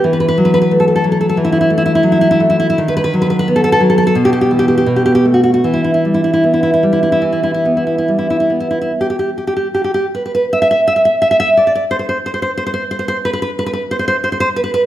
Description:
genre	romantic piece for solo classical guitar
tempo	66-93 BPM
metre	4/4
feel	rubato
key	E minor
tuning	A4 = 438 Hz
part	nylon-string guitar	solo	0.0-14.8 s	B2 to E5	-12 LUFS	equal	none
room	moderate recital hall reverb, RT60 1.5 s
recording	none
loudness	-12 LUFS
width	side -12 dB against mid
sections	0.0-8.9 A section; 8.9-14.9 B section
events	none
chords	0.0 Esus24; 2.8 B/D#; 4.2 E5/B; 4.9 Gmaj9/B; 5.6 Em; 8.9 N.C.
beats	| 0.04 0.71 1.37 2.02 | 2.78 3.48 4.16 4.87 | 5.64 6.43 7.23 8.10 | 8.92 9.67 10.45 11.15 | 11.83 12.50 13.16 13.82 | 14.47

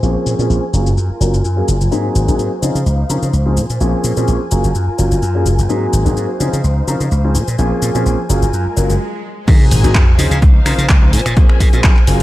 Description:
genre	filtered disco house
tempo	127 BPM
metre	4/4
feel	swing 54% on 16ths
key	Bb minor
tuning	A4 = 440 Hz
part	warm grand piano	accompaniment	0.0-12.2 s	F3 to Bb4	-19 LUFS	left 1 dB	phaser, sidechain pumping, low-pass filter
part	warm studio string section	sustained chords	0.0-12.2 s	Eb4 to Ab5	-25 LUFS	left 1 dB	sidechain pumping, low-pass filter
part	glassy slap bass	bass	0.0-12.2 s	Gb1 to Db3	-15 LUFS	equal	sidechain pumping, low-pass filter
part	punchy analog drum machine	drums	0.0-12.2 s	crash cymbal, finger snaps, handclaps, hi-hat, shaker	-23 LUFS	left 1 dB	overdrive, sidechain pumping on perc, low-pass filter on perc, studio ambience, sidechain pumping on hats, low-pass filter on hats, sidechain pumping on cymbals, low-pass filter on cymbals, low-pass filter on snare
part	swell and sub drop	sound effects	8.7-11.4 s	none	-20 LUFS	equal	none
part	electronic kick drum	drums	9.5-11.9 s	none	-10 LUFS	equal	overdrive, studio ambience
room	light reverb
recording	dark, warm production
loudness	-12 LUFS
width	side -16 dB against mid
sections	0.0-9.5 A section; 9.5-12.2 B section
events	filter sweep 0.0-9.5; swell 8.7-9.5; stop 9.0-9.5; drop 9.5-12.2; impact 9.5-11.4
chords	0.0 Bbm9; 0.7 Gbmaj9; 1.9 Ab7; 2.6 Dbmaj9; 3.6 Bbm9; 4.5 Gbmaj9; 5.7 Ab7; 6.4 Dbmaj9; 7.4 Bbm9; 8.3 Gbmaj9; 9.5 Ab7; 10.2 Dbmaj9; 11.1 Bbm9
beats	| 0.03 0.50 0.97 1.45 | 1.92 2.39 2.86 3.33 | 3.81 4.28 4.75 5.22 | 5.70 6.17 6.64 7.11 | 7.59 8.06 8.53 9.00 | 9.48 9.95 10.42 10.89 | 11.37 11.84

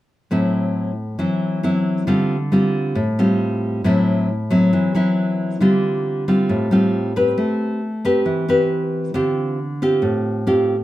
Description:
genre	bossa nova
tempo	136 BPM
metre	4/4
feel	straight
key	A minor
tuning	A4 = 437 Hz
part	nylon-string guitar	solo	0.3-10.8 s	A2 to B4	-17 LUFS	equal	none
room	wet large studio reverb, RT60 0.9 s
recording	minimal, uncompressed stereo recording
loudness	-17 LUFS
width	side -15 dB against mid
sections	0.3-7.4 A section; 7.4-10.8 B section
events	none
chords	0.3 Am6; 2.1 Dm7; 3.8 Am6; 5.6 Dm7; 7.4 Am9; 9.1 Dm7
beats	| 0.31 0.75 1.19 1.64 | 2.08 2.52 2.96 3.40 | 3.84 4.28 4.72 5.17 | 5.61 6.05 6.49 6.93 | 7.37 7.81 8.25 8.70 | 9.14 9.58 10.02 10.46

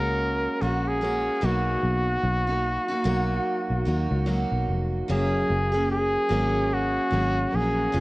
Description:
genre	acoustic pop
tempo	74 BPM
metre	4/4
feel	swing 60% on 16ths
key	F# major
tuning	A4 = 440 Hz
part	clear trumpet	melody	0.0-8.0 s	F#4 to A#4	-26 LUFS	equal	cassette tape, plate reverb, tape echo
part	picked steel-string acoustic guitar	accompaniment	0.0-8.0 s	F#2 to G#4	-28 LUFS	right 1 dB	cassette tape, plate reverb
part	fingered electric bass	bass	0.0-8.0 s	E#1 to D#2	-26 LUFS	equal	none
room	moderate booth ambience, RT60 0.2 s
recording	home recording on cassette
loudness	-22 LUFS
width	side -21 dB against mid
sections	0.0-5.1 A section; 5.1-8.0 B section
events	none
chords	0.0 F#add9; 1.4 Bmaj7; 5.1 F#add9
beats	0.20 1.01 | 1.83 2.64 3.46 4.27 | 5.08 5.90 6.71 7.53

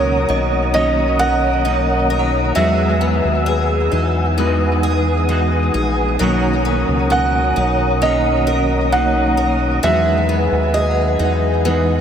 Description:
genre	dream pop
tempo	66 BPM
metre	4/4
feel	straight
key	B major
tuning	A4 = 440 Hz
part	felt-muted upright piano	melody	0.0-12.0 s	C#5 to F#5	-20 LUFS	right 3 dB	tape echo
part	clean electric guitar	accompaniment	0.0-12.0 s	B2 to F#4	-24 LUFS	right 4 dB	harmonic tremolo, lush chorus
part	mellow tonewheel organ	sustained chords	0.0-12.0 s	B4 to E6	-22 LUFS	equal	chorus vibrato, slow rotary speaker
part	picked twelve-string acoustic guitar	arpeggios	0.0-12.0 s	F#3 to A#4	-21 LUFS	left 4 dB	analog chorus, tape echo
part	round analog bass	bass	0.0-12.0 s	A#1 to E2	-19 LUFS	equal	none
part	synth chime	texture	0.3-12.0 s	D#5 to G#5	-32 LUFS	equal	none
room	wet huge ambient reverb, RT60 9.4 s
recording	dreamy mix soaked in reverb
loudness	-14 LUFS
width	side -8 dB against mid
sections	0.0-12.0 A section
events	none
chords	0.0 Bmaj9; 2.6 Emaj9; 6.2 Bmaj9; 9.8 Emaj9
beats	0.74 1.65 | 2.56 3.47 4.38 5.29 | 6.20 7.11 8.02 8.93 | 9.83 10.74 11.65

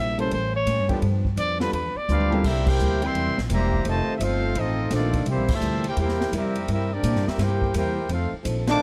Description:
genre	jazz, big band swing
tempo	170 BPM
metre	4/4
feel	swing 64% on 8ths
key	C major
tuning	A4 = 441 Hz
part	clear trumpet	melody	0.0-2.3 s	B4 to E5	-28 LUFS	equal	none
part	picked steel-string acoustic guitar	accompaniment	0.0-8.8 s	G2 to A4	-35 LUFS	equal	none
part	upright bass	bass	0.0-8.8 s	E1 to Bb2	-28 LUFS	equal	none
part	warm grand piano	accompaniment	0.2-2.4 s	G3 to A4	-32 LUFS	equal	none
part	swinging big-band drum kit	drums	0.2-8.7 s	crash cymbal, hi-hat, kick drum, ride cymbal, snare drum, toms	-33 LUFS	equal	none
part	clear trombone section	sustained chords	0.9-2.4 s	E3 to G4	-39 LUFS	equal	none
part	warm trumpet section	melody	2.1-8.8 s	Bb3 to D6	-31 LUFS	equal	none
part	bright trombone section	second line	2.1-8.8 s	Bb2 to G4	-30 LUFS	equal	none
room	light reverb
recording	dark, warm production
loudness	-24 LUFS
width	mono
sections	0.0-2.4 A section; 2.4-8.8 B section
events	trumpet solo 0.0-2.4; drum fill 2.1-2.4; band accent 2.6, 5.4, 8.6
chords	0.3 A7b9; 1.0 G7; 2.4 C7; 3.9 F7; 5.3 C7; 8.1 F7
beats	0.32 0.67 | 1.02 1.38 1.73 2.08 | 2.44 2.79 3.15 3.50 | 3.85 4.21 4.56 4.91 | 5.26 5.62 5.97 6.33 | 6.68 7.03 7.38 7.74 | 8.09 8.45 8.80

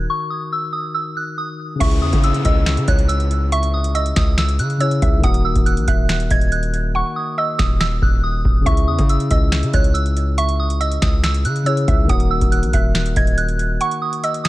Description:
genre	hip hop, trap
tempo	140 BPM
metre	4/4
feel	half-time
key	unclear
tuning	A4 = 440 Hz
part	soft synth bell	melody	0.0-14.5 s	Db6 to Ab6	-23 LUFS	right 2 dB	chorus, phaser, low-pass filter, tape echo
part	tine electric piano	accompaniment	0.0-14.5 s	Db3 to Bb4	-25 LUFS	left 4 dB	low-pass filter
part	hard-hitting 808-style bass	bass	0.0-13.8 s	Eb1 to Db3	-19 LUFS	equal	none
part	mallet-like synth pluck	second line	1.8-14.5 s	Db5 to Gb5	-28 LUFS	right 2 dB	chorus, tape echo
part	booming analog drum machine	drums	1.8-14.5 s	crash cymbal, finger snaps, hi-hat, kick drum, snare drum	-18 LUFS	equal	none
part	downlifter	sound effects	1.8-5.2 s	none	-32 LUFS	equal	none
room	digital ambience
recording	none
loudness	-15 LUFS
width	side -17 dB against mid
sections	0.0-1.8 A section; 1.8-14.5 B section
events	silent gap 0.1-1.8; hi-hats muted 7.0-8.7; break 13.8-14.5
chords	0.0 Ebm; 1.8 Dbm; 5.2 Ebm; 8.7 Dbm; 12.1 Ebm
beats	| 0.09 0.52 0.95 1.38 | 1.81 2.24 2.66 3.09 | 3.52 3.95 4.38 4.81 | 5.24 5.66 6.09 6.52 | 6.95 7.38 7.81 8.24 | 8.66 9.09 9.52 9.95 | 10.38 10.81 11.24 11.66 | 12.09 12.52 12.95 13.38 | 13.81 14.24

